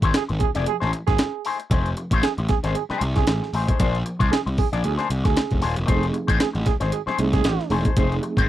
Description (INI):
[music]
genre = funk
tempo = 115 BPM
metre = 4/4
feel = swing 56% on 16ths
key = unclear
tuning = A4 = 442 Hz
[part]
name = electric guitar with an envelope filter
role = accompaniment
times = 0.0-8.5 s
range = A3 to D5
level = -26 LUFS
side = left 6 dB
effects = wah
[part]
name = fuzz picked electric bass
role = bass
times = 0.0-8.5 s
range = Eb1 to D2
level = -24 LUFS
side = equal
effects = overdrive
[part]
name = breakbeat sampler-style drum kit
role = drums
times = 0.0-8.5 s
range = hi-hat, kick drum, snare drum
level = -22 LUFS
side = equal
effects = none
[part]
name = clear trombone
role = second line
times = 0.1-7.7 s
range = G#4 to Ab4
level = -26 LUFS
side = right 16 dB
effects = none
[part]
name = reed electric piano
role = stabs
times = 5.9-8.5 s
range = A3 to G#4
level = -26 LUFS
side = right 4 dB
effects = fast tremolo
[sound]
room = little or no reverb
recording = dry, close 1970s-style studio recording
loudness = -20 LUFS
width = side -13 dB against mid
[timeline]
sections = 0.0-8.5 A section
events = none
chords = 0.0 F7#9 (rootless); 3.8 Bb9; 5.9 F7#9